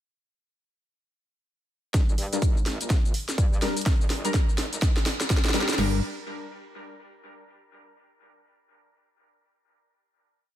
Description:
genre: bass house.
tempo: 125 BPM.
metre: 4/4.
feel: swing 61% on 16ths.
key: G phrygian.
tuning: A4 = 442 Hz.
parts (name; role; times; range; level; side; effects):
metallic wobble bass; bass; 1.9-6.0 s; G1 to G2; -32 LUFS; equal; chorus, tube saturation, sidechain pumping, high-pass filter.
big-room dance drum kit; drums; 1.9-5.9 s; crash cymbal, kick drum, snare drum; -23 LUFS; equal; overdrive, studio reverb.
garage drum kit; drums; 1.9-5.8 s; hi-hat, shaker, snare drum; -28 LUFS; equal; overdrive, studio reverb.
orchestra-hit-like synth stab; stabs; 2.3-6.0 s; G3 to Bb4; -32 LUFS; left 2 dB; built-in reverb, sidechain pumping, dub echo.
room: digital ambience.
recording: none.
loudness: -22 LUFS.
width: side -12 dB against mid.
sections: 1.9-5.8 build; 5.8-7.7 final chord.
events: build-up 1.9-5.8; drum fill 1.9-5.8; filter sweep on synth stab 1.9-5.8.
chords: 1.9 Gm.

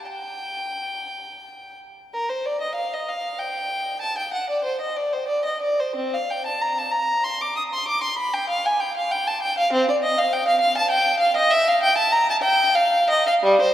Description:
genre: classical, baroque-style suite movement for unaccompanied violin.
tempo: 57-69 BPM (dotted quarters).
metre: 6/8.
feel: rubato.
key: G minor.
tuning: A4 = 439 Hz.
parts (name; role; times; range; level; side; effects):
warm violin; solo; 0.1-13.7 s; G3 to Eb6; -20 LUFS; equal; none.
room: wet cathedral reverb, RT60 5.5 s.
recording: heard from further back in the room.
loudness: -19 LUFS.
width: side -12 dB against mid.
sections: 0.0-2.1 A section; 2.1-13.7 B section.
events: none.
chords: none.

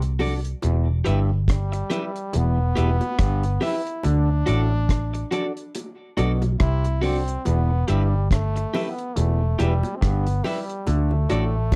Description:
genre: roots reggae.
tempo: 70 BPM.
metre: 4/4.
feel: swing 57% on 16ths.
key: E minor.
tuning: A4 = 440 Hz.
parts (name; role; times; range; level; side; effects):
auto-wah clav; riff; 0.0-11.6 s; E2 to D3; -31 LUFS; equal; overdrive.
vintage muted fingered electric bass; bass; 0.0-11.8 s; E1 to D2; -24 LUFS; equal; none.
deep reggae drum kit; drums; 0.0-11.8 s; hi-hat, kick drum, rim click; -27 LUFS; equal; none.
electric guitar at the edge of break-up; accompaniment; 0.2-11.4 s; F#4 to E5; -32 LUFS; equal; none.
percussive organ stab; stabs; 0.2-11.5 s; D4 to E5; -33 LUFS; equal; chorus.
bongos; percussion; 0.2-11.8 s; none; -35 LUFS; equal; none.
bright trombone; melody; 1.5-11.8 s; G3 to E4; -32 LUFS; equal; none.
room: light reverb.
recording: dark, warm production.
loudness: -23 LUFS.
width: mono.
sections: 0.0-11.8 A section.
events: none.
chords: 0.0 D; 0.6 Em; 4.0 D; 7.5 Em; 10.9 D.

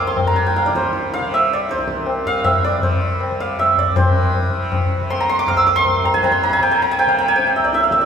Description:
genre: indian classical, Hindustani.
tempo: 159 BPM.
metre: 4/4.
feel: straight.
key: C raga charukeshi.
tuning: A4 = 441 Hz.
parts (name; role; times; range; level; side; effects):
santur; melody; 0.0-8.1 s; C5 to F6; -16 LUFS; right 2 dB; none.
tanpura; drone; 0.0-8.1 s; C2 to C3; -26 LUFS; equal; none.
tabla; percussion; 0.2-8.1 s; none; -21 LUFS; left 2 dB; none.
room: wet recital hall reverb, RT60 1.6 s.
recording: heard from further back in the room.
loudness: -15 LUFS.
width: side -7 dB against mid.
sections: 0.0-4.0 A section; 4.0-8.1 B section.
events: none.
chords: none.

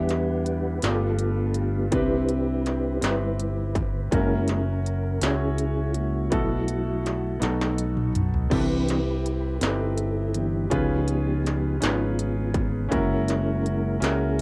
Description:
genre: slow gospel.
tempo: 55 BPM (dotted quarters).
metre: 6/8.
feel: straight.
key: unclear.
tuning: A4 = 440 Hz.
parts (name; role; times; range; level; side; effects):
clear baby grand piano; accompaniment; 0.0-14.4 s; G2 to C#5; -32 LUFS; equal; cassette tape.
percussive tonewheel organ; sustained chords; 0.0-14.4 s; E3 to F#5; -30 LUFS; equal; slow rotary speaker, chorus vibrato, cassette tape.
fingered electric bass; bass; 0.0-14.4 s; F#1 to E2; -29 LUFS; equal; none.
industrial drum kit; drums; 0.1-14.4 s; crash cymbal, hi-hat, kick drum, snare drum, toms; -31 LUFS; equal; distortion.
room: moderate small room reverb, RT60 0.6 s.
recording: home recording on cassette.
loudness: -25 LUFS.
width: mono.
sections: 0.0-14.4 A section.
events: tonewheel organ solo 0.0-14.4; drum fill 7.4-8.5.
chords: 0.0 Em7; 0.8 G7; 1.9 Cmaj7; 4.1 F#7; 6.3 B7sus4; 7.4 B7; 8.5 Cmaj7; 10.7 C#7; 12.9 F#7.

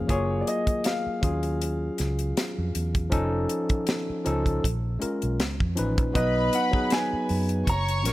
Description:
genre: lush 1970s-style soul.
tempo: 79 BPM.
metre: 4/4.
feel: swing 54% on 16ths.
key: unclear.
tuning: A4 = 440 Hz.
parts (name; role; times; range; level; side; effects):
dark grand piano; melody; 0.0-8.1 s; C#5 to A#5; -30 LUFS; equal; none.
barky tine electric piano; accompaniment; 0.0-8.1 s; E#3 to B4; -28 LUFS; left 1 dB; overdrive.
vintage muted fingered electric bass; bass; 0.0-8.1 s; F1 to F#2; -28 LUFS; equal; none.
tight funk drum kit; drums; 0.1-8.1 s; hi-hat, kick drum, snare drum; -28 LUFS; equal; none.
rich studio string section; second line; 6.2-8.1 s; B4 to C#6; -30 LUFS; equal; none.
room: light reverb, small room ambience.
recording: none.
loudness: -23 LUFS.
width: side -16 dB against mid.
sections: 0.0-6.2 A section; 6.2-8.1 B section.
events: none.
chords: 0.1 F#maj9; 1.2 D#m11; 3.1 Faug7; 4.6 A#m7; 5.4 C#9; 6.2 B.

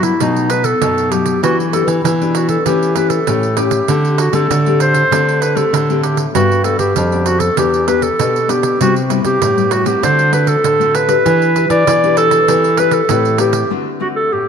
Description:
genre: samba and choro.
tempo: 98 BPM.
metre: 4/4.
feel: straight.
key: unclear.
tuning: A4 = 440 Hz.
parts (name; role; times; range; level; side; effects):
clear clarinet; melody; 0.0-14.5 s; D#4 to D5; -15 LUFS; right 1 dB; none.
nylon-string guitar; accompaniment; 0.0-14.5 s; F#2 to B4; -19 LUFS; left 10 dB; none.
nylon-string guitar; bass; 0.0-13.6 s; E2 to F#3; -17 LUFS; equal; none.
pandeiro; percussion; 0.0-13.7 s; none; -22 LUFS; right 11 dB; none.
room: wet echo chamber reverb, RT60 2.3 s.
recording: 1960s-style stereo with parts hard left and right.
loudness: -11 LUFS.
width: side -7 dB against mid.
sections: 0.0-14.5 A section.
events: break 13.7-14.5.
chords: 0.2 B7; 1.4 Em7; 2.7 A7/E; 3.9 D7sus4; 6.3 Gmaj7; 7.6 Em7; 8.8 Cmaj7; 10.0 D7; 11.3 Em7; 12.5 Cmaj7/E; 13.7 D7.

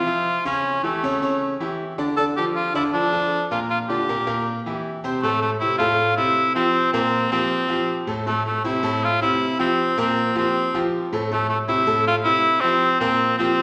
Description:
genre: latin.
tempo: 158 BPM.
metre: 4/4.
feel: straight.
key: F major.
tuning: A4 = 437 Hz.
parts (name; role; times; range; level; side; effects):
clear cor anglais; melody; 0.0-13.6 s; A3 to A4; -23 LUFS; equal; none.
bright concert grand piano; accompaniment; 0.0-13.6 s; A2 to E5; -26 LUFS; equal; none.
room: wet recital hall reverb, RT60 1.8 s.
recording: recorded in a church or concert hall.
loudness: -21 LUFS.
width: mono.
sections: 0.0-5.2 A section; 5.2-13.6 B section.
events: none.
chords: 0.0 F5; 0.6 A7; 2.2 Dm; 3.7 Gm7; 4.5 C7; 5.2 Fmaj7; 6.7 C7sus4; 8.3 Fmaj7; 9.8 C7sus4; 11.3 Fmaj7; 12.8 C7sus4.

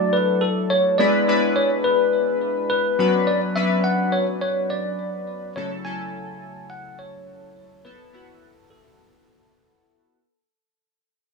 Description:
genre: pop.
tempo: 105 BPM.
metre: 4/4.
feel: straight.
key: A major.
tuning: A4 = 440 Hz.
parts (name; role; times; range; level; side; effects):
bell-like tine electric piano; melody; 0.0-9.8 s; A4 to G#5; -22 LUFS; left 1 dB; fast stereo tremolo, digital delay.
chorused retro synth keys; accompaniment; 0.0-10.2 s; C#3 to B4; -22 LUFS; left 2 dB; none.
room: light reverb.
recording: studio reverb.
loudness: -19 LUFS.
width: side -3 dB against mid.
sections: 0.0-10.1 A section.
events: fade-out 0.0-10.1.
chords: 0.0 Dadd9; 1.0 E7; 3.0 Bmadd9; 5.6 A6/C#; 7.9 Asus2.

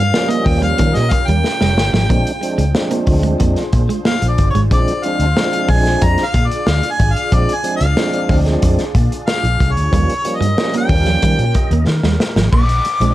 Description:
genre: funk.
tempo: 92 BPM.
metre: 4/4.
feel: straight.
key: Bb mixolydian.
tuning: A4 = 444 Hz.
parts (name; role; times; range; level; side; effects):
mellow harmonica; melody; 0.0-13.1 s; Db5 to D6; -20 LUFS; left 1 dB; none.
soft string machine; sustained chords; 0.0-12.5 s; Db4 to D5; -26 LUFS; equal; phaser, ensemble chorus.
clean electric guitar; riff; 0.0-4.6, 9.9-13.1 s; F3 to Bb3; -22 LUFS; right 6 dB; none.
tonewheel organ; stabs; 0.0-13.1 s; F3 to Eb5; -21 LUFS; right 2 dB; overdrive, fast rotary speaker.
vintage muted fingered electric bass; bass; 0.0-13.1 s; F1 to Eb3; -16 LUFS; equal; none.
crunchy breakbeat drum kit; drums; 0.1-13.1 s; crash cymbal, hi-hat, kick drum, snare drum; -18 LUFS; equal; none.
room: light reverb.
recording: none.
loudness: -13 LUFS.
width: side -15 dB against mid.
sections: 0.0-12.5 A section.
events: harmonica solo 0.0-12.5; drum fill 1.4-2.1, 11.9-12.5; tonewheel organ fill 11.2-12.5.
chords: 0.0 Eb9; 2.1 Bb9; 9.9 Eb9; 12.5 Bb9.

